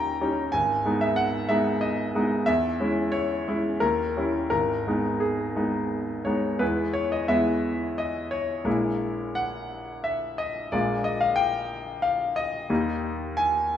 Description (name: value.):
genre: classical, romantic character piece for solo piano.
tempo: 81-96 BPM.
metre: 3/4.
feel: rubato.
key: G# minor.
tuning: A4 = 441 Hz.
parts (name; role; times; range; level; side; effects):
bright grand piano; solo; 0.0-13.8 s; G#1 to A#5; -23 LUFS; left 1 dB; none.
room: moderate concert hall reverb, RT60 2.2 s.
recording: small room ambience.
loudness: -23 LUFS.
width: side -10 dB against mid.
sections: 0.0-6.6 A section; 6.6-13.8 B section.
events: none.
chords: 0.0 D#7; 0.5 G#m; 2.5 C#m/E; 3.8 D#7b9; 4.5 G#m; 6.6 E; 8.7 A#m7b5; 10.7 A#5; 12.7 D#.